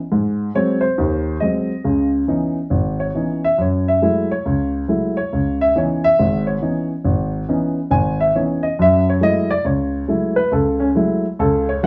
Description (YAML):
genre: solo jazz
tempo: 138 BPM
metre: 4/4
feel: swing 65% on 8ths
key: C# minor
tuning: A4 = 440 Hz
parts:
  - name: dark baby grand piano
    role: solo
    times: 0.1-11.9 s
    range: G#1 to G#5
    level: -18 LUFS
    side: equal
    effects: none
room: wet studio reverb, RT60 0.6 s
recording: band playing live in one room, nothing above 7.9 kHz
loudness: -18 LUFS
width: mono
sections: 0.0-1.8 A section; 1.8-11.9 A section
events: grand piano solo 0.0-11.9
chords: 0.1 G#7; 1.8 C#m9; 3.6 F#m9; 5.3 C#m9; 8.8 F#m9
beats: | 0.11 0.55 0.98 1.41 | 1.84 2.28 2.71 3.15 | 3.58 4.01 4.44 4.88 | 5.31 5.74 6.18 6.61 | 7.04 7.48 7.91 8.34 | 8.78 9.21 9.64 10.08 | 10.51 10.95 11.38 11.81